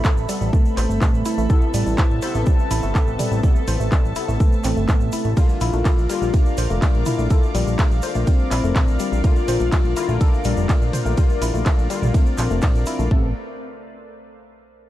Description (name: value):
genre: melodic techno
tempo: 124 BPM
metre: 4/4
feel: straight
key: A minor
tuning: A4 = 441 Hz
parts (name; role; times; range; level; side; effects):
- evolving wavetable pad; sustained chords; 0.0-13.3 s; A4 to D6; -33 LUFS; left 1 dB; chorus, built-in reverb, sidechain pumping
- woody wave-folded pluck; arpeggios; 0.0-13.3 s; G3 to C5; -28 LUFS; left 2 dB; chorus, sidechain pumping, dub echo
- sync-sweep polysynth; stabs; 0.0-13.3 s; C3 to A4; -29 LUFS; left 5 dB; chorus, sidechain pumping, dub echo
- fat analog bass; bass; 0.0-13.3 s; F1 to Bb1; -22 LUFS; equal; sidechain pumping
- electronic kick drum; drums; 0.0-13.2 s; none; -17 LUFS; equal; none
- house drum kit; drums; 0.0-13.0 s; handclaps, hi-hat, ride cymbal, toms; -29 LUFS; equal; none
- egg shaker; percussion; 0.0-13.1 s; none; -39 LUFS; right 4 dB; none
- downlifter; sound effects; 0.0-1.5 s; none; barely audible; none; none
- expressive synth lead; melody; 0.5-13.3 s; A3 to F4; -27 LUFS; equal; chorus, sidechain pumping, ping-pong delay
room: little or no reverb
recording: dark, warm production, faint mains hum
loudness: -17 LUFS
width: side -14 dB against mid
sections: 0.0-13.1 A section; 13.1-14.9 B section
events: drop 0.0-13.1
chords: 0.0 Amadd9; 5.4 Bb; 13.1 Amadd9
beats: 0.05 0.53 1.01 | 1.50 1.98 2.47 2.95 | 3.43 3.92 4.40 4.88 | 5.37 5.85 6.34 6.82 | 7.30 7.79 8.27 8.76 | 9.24 9.72 10.21 10.69 | 11.18 11.66 12.14 12.63 | 13.11